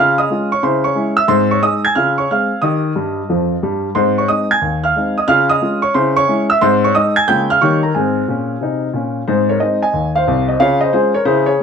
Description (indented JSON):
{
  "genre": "jazz, stride piano",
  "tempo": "181 BPM",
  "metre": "4/4",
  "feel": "swing 66% on 8ths",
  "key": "Ab major",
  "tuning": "A4 = 440 Hz",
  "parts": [
    { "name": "warm baby grand piano", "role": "solo", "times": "0.0-11.6 s", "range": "C2 to Ab6", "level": "-13 LUFS", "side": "equal", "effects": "none" }
  ],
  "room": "moderate studio reverb, RT60 0.6 s",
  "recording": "none",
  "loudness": "-13 LUFS",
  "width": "side -6 dB against mid",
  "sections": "0.0-9.3 A section; 9.3-11.6 A section",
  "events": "grand piano fill 3.0-4.0",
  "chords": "0.0 Db; 0.6 Dbm; 1.3 Ab; 2.0 Dbmaj7; 2.6 Eb; 4.0 Ab; 5.3 Db; 6.0 Dbm; 6.6 Ab; 7.3 Db6; 7.6 Eb7; 7.9 Ab; 10.6 Db",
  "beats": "0.31 0.64 0.98 | 1.31 1.64 1.97 2.31 | 2.64 2.97 3.30 3.63 | 3.97 4.30 4.63 4.96 | 5.29 5.63 5.96 6.29 | 6.62 6.95 7.29 7.62 | 7.95 8.28 8.61 8.94 | 9.27 9.60 9.94 10.27 | 10.60 10.93 11.26 11.59"
}